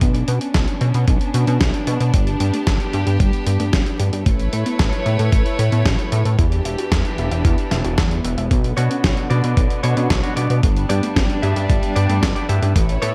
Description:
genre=italo disco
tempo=113 BPM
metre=4/4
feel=straight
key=B minor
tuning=A4 = 440 Hz
part: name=warm chamber string section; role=sustained chords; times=0.0-13.1 s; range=D3 to C#5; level=-28 LUFS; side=equal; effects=shimmer reverb
part: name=warbly dusty pluck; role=arpeggios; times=0.0-13.1 s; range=G3 to E5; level=-32 LUFS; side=equal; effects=none
part: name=chorused synth bass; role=bass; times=0.0-13.1 s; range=E1 to B2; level=-22 LUFS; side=equal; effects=none
part: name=dusty soul sampler-style drum kit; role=drums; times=0.0-13.1 s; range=hi-hat, snare drum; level=-27 LUFS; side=equal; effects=gated reverb
part: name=electronic kick drum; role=drums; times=0.0-12.9 s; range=none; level=-21 LUFS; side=equal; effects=none
part: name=direct-recorded clean electric guitar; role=stabs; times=8.8-13.1 s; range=G2 to E5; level=-28 LUFS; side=equal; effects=tape echo, shimmer reverb
room=digital ambience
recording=vinyl crackle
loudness=-18 LUFS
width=mono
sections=0.0-13.1 A section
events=none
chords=0.0 Bmadd9; 2.1 G; 4.3 Aadd9; 6.4 Em7; 8.5 Bmadd9; 10.6 G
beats=| 0.01 0.55 1.08 1.61 | 2.14 2.67 3.20 3.73 | 4.26 4.79 5.32 5.86 | 6.39 6.92 7.45 7.98 | 8.51 9.04 9.57 10.10 | 10.63 11.16 11.70 12.23 | 12.76

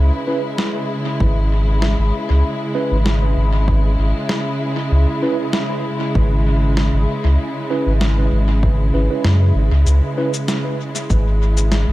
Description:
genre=ambient dub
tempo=97 BPM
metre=4/4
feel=straight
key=C# minor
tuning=A4 = 441 Hz
part: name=warm studio string section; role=sustained chords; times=0.0-11.9 s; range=C#3 to E4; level=-22 LUFS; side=equal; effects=none
part: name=warm sub bass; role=bass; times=0.0-11.9 s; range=G#1 to F#2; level=-15 LUFS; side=equal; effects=none
part: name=mellow tine electric piano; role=stabs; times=0.3-10.3 s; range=C#4 to B4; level=-26 LUFS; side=right 3 dB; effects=medium stereo tremolo, dub echo
part: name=electronic snare drum and cabasa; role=drums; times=0.6-11.8 s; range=none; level=-25 LUFS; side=equal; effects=dub echo
part: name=electronic kick drum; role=drums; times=1.2-11.2 s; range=none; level=-20 LUFS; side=equal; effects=overdrive
room=little or no reverb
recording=echo-heavy mix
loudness=-15 LUFS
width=side -17 dB against mid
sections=0.0-11.9 A section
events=none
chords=0.0 C#m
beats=0.59 1.21 1.82 | 2.44 3.06 3.68 4.30 | 4.92 5.54 6.16 6.77 | 7.39 8.01 8.63 9.25 | 9.87 10.48 11.10 11.72

